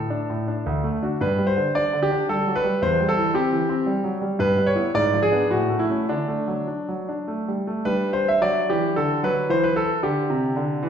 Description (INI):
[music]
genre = classical, baroque-style suite movement for grand piano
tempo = 100-115 BPM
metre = 3/4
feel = rubato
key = D major from 4.4 s, G major from 7.9 s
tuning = A4 = 441 Hz
[part]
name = bright concert grand piano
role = solo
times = 0.0-10.9 s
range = D2 to E5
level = -20 LUFS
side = equal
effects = none
[sound]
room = wet recital hall reverb, RT60 1.5 s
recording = recorded in a church or concert hall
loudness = -20 LUFS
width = side -8 dB against mid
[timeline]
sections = 0.0-7.9 A section; 7.9-10.9 A section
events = none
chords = 0.0 D5; 0.7 D; 1.2 G5; 2.8 C/E; 4.4 Em/G; 5.0 G#dim7; 5.5 A; 6.1 D; 7.9 G5; 9.5 C